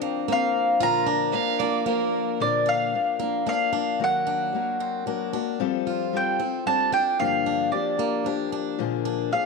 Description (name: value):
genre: acoustic folk duo or small band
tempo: 113 BPM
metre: 3/4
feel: straight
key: Bb major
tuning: A4 = 440 Hz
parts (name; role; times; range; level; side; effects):
- mandolin; melody; 0.0-9.5 s; D5 to Bb5; -24 LUFS; right 1 dB; none
- picked steel-string acoustic guitar; accompaniment; 0.0-9.5 s; G2 to Bb4; -27 LUFS; left 12 dB; none
- picked plugged-in swing-style acoustic guitar; arpeggios; 0.0-9.5 s; Bb3 to F4; -31 LUFS; right 11 dB; none
- warm fiddle; second line; 1.3-2.4 s; Bb4 to F5; -30 LUFS; right 11 dB; tape echo
room: moderate plate reverb, RT60 3.2 s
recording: 1960s-style stereo with parts hard left and right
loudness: -22 LUFS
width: side -3 dB against mid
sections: 0.0-2.4 A section; 2.4-9.5 B section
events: none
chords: 0.0 Bbadd9; 0.8 Bb; 4.0 Ebm; 5.6 Fadd9; 7.2 Gm7; 8.8 Bb7